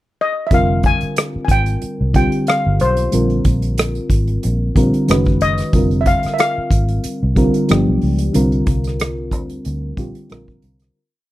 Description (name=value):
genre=R&B, neo-soul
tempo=92 BPM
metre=4/4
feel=swing 54% on 16ths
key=F dorian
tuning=A4 = 440 Hz
part: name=steel pan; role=melody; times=0.2-10.3 s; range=C5 to Ab5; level=-19 LUFS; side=left 2 dB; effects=slapback echo
part: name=mellow FM electric piano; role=accompaniment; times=0.5-11.0 s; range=D3 to B4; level=-19 LUFS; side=equal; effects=chorus
part: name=vintage muted fingered electric bass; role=bass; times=0.5-10.9 s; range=F1 to D2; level=-19 LUFS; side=equal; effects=none
part: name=unplugged drum kit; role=drums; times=0.5-10.9 s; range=hi-hat, kick drum, rim click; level=-18 LUFS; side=equal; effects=none
room=little or no reverb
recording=dry, close 1970s-style studio recording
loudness=-14 LUFS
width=side -16 dB against mid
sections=0.0-0.5 pickup bar; 0.5-10.9 verse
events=fade-out 8.3-10.9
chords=0.0 N.C.; 0.5 Fm69; 3.1 Bb9; 5.1 Gbsus2; 5.7 Fm69; 7.7 G7; 8.3 Bbadd9